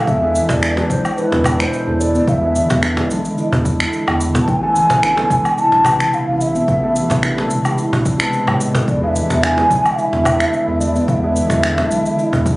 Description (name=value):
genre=organic downtempo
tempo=109 BPM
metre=4/4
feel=straight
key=unclear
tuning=A4 = 440 Hz
part: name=breathy mellow ney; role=melody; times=0.0-12.6 s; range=B4 to A5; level=-17 LUFS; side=equal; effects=tape echo
part: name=felt-muted upright piano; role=accompaniment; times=0.0-11.9 s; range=B2 to A5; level=-25 LUFS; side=right 1 dB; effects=sidechain pumping, tape echo
part: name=granular cloud pad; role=sustained chords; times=0.2-12.6 s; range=C3 to E4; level=-27 LUFS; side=equal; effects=built-in reverb, sidechain pumping
part: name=handpan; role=arpeggios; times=0.0-12.6 s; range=E3 to A4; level=-20 LUFS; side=equal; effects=tape echo
part: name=round analog bass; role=bass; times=0.1-12.6 s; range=E1 to A2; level=-21 LUFS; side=equal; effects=sidechain pumping
part: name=electronic cabasa, finger snaps and woodblock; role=drums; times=0.1-12.6 s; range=none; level=-23 LUFS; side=equal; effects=none
part: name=electronic kick drum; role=drums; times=0.1-12.6 s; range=none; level=-21 LUFS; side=equal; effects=none
part: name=cajon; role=percussion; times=0.5-12.4 s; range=none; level=-22 LUFS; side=equal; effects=none
room=moderate lush hall reverb, RT60 1.7 s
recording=recorded on a phone in the room, studio ambience, compression, nothing above 10.8 kHz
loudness=-13 LUFS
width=side -20 dB against mid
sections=0.0-12.6 A section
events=none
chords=0.1 E7; 4.5 Amadd9; 8.9 E7